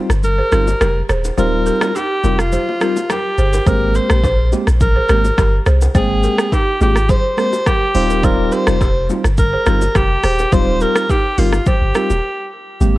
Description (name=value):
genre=afrobeats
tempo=105 BPM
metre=4/4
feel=straight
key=Eb major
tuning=A4 = 437 Hz
part: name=tine electric piano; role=accompaniment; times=0.0-13.0 s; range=G3 to G5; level=-20 LUFS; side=left 1 dB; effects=medium stereo tremolo
part: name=punchy sub bass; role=bass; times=0.1-13.0 s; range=Eb1 to C2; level=-16 LUFS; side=equal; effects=none
part: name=afro-pop drum kit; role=drums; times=0.1-12.9 s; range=hi-hat, kick drum, rim click, shaker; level=-18 LUFS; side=equal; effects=none
part: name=breathy alto saxophone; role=melody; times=0.2-12.5 s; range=F4 to C5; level=-19 LUFS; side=equal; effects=none
part: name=congas and bongos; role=percussion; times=0.2-12.9 s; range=none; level=-28 LUFS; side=left 6 dB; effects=none
part: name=balafon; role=riff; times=0.4-13.0 s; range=Eb4 to C5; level=-24 LUFS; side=right 3 dB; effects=none
room=studio reverb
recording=worn, warbling old tape, cassette tape, warbly pitch drift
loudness=-13 LUFS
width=side -17 dB against mid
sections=0.0-12.8 A section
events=break 0.0-3.7, 12.2-12.8; kick muted 12.8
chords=0.0 Eb69; 3.7 Abmaj9; 8.0 Eb69